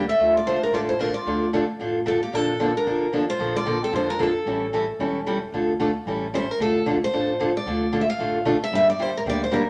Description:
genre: acoustic string swing (jazz manouche)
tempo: 225 BPM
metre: 4/4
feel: swing 57% on 8ths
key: D minor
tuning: A4 = 439 Hz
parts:
  - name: picked steel-string acoustic guitar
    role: accompaniment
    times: 0.0-9.6 s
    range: D3 to A4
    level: -26 LUFS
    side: equal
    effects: none
  - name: upright bass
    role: bass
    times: 0.0-9.7 s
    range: E1 to F2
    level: -35 LUFS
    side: equal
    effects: none
  - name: picked steel-string acoustic guitar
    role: melody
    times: 0.1-9.7 s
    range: G4 to F5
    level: -26 LUFS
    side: equal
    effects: none
  - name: growling clarinet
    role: second line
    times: 0.1-4.4 s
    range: Bb3 to A4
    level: -35 LUFS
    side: equal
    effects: none
room: wet studio reverb, RT60 0.7 s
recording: lossy compression artefacts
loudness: -23 LUFS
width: mono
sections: 0.0-6.6 A section; 6.6-9.7 A section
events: none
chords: 0.2 Dm; 2.3 Bbmaj7; 4.5 A7; 5.5 Dm; 6.1 A7; 6.6 Dm; 8.7 Gm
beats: | 0.19 0.46 0.73 0.99 | 1.26 1.53 1.79 2.06 | 2.33 2.60 2.86 3.13 | 3.40 3.66 3.93 4.20 | 4.46 4.73 5.00 5.26 | 5.53 5.79 6.06 6.33 | 6.59 6.86 7.12 7.39 | 7.66 7.92 8.19 8.45 | 8.72 8.98 9.25 9.51

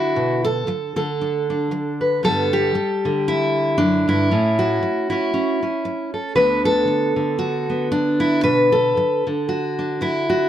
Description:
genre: folk, solo fingerstyle acoustic guitar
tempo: 116 BPM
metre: 4/4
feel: swing 56% on 8ths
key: unclear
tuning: A4 = 440 Hz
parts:
  - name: fingerpicked steel-string acoustic guitar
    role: solo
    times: 0.0-10.5 s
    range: D2 to B4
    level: -17 LUFS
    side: equal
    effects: none
room: light reverb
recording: close, detailed microphones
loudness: -17 LUFS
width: side -11 dB against mid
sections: 0.0-10.5 A section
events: none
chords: 0.0 Bm7; 2.2 Gadd9; 4.3 A; 6.4 Bm7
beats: | 0.15 0.67 1.19 1.71 | 2.22 2.74 3.26 3.78 | 4.29 4.81 5.33 5.85 | 6.37 6.88 7.40 7.92 | 8.44 8.96 9.47 9.99

